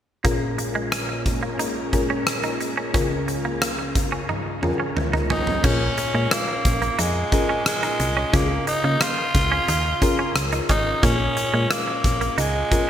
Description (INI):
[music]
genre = 1980s-style pop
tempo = 89 BPM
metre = 4/4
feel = straight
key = Bb minor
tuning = A4 = 440 Hz
[part]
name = mellow FM electric piano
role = accompaniment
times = 0.2-12.9 s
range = Bb1 to Bb4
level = -27 LUFS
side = left 3 dB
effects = chorus, shimmer reverb
[part]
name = string machine, violins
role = sustained chords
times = 0.2-5.6 s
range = Bb2 to Bb4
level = -32 LUFS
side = equal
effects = ensemble chorus, shimmer reverb
[part]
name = clean electric guitar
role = riff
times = 0.2-12.7 s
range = Ab3 to Eb4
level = -28 LUFS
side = right 4 dB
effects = analog chorus, shimmer reverb, digital delay
[part]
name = huge arena drum kit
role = drums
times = 0.2-12.9 s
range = crash cymbal, hi-hat, kick drum, rim click, toms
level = -24 LUFS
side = equal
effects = gated reverb
[part]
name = growling tenor saxophone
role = melody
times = 5.3-12.9 s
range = Ab3 to F4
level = -23 LUFS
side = equal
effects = shimmer reverb
[part]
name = solid FM bass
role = bass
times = 5.6-12.6 s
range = Ab1 to Db3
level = -24 LUFS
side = equal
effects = none
[sound]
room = moderate plate reverb, RT60 2.7 s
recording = bright 1980s-style digital production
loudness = -19 LUFS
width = side -10 dB against mid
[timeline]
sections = 0.2-5.6 A section; 5.6-12.9 B section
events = drum fill 4.3-5.6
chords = 0.2 Bbm7; 2.9 Db6; 5.6 Bbm7; 8.3 Db6; 11.0 Bbm7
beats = | 0.25 0.92 1.59 2.27 | 2.94 3.62 4.29 4.96 | 5.64 6.31 6.99 7.66 | 8.34 9.01 9.68 10.36 | 11.03 11.71 12.38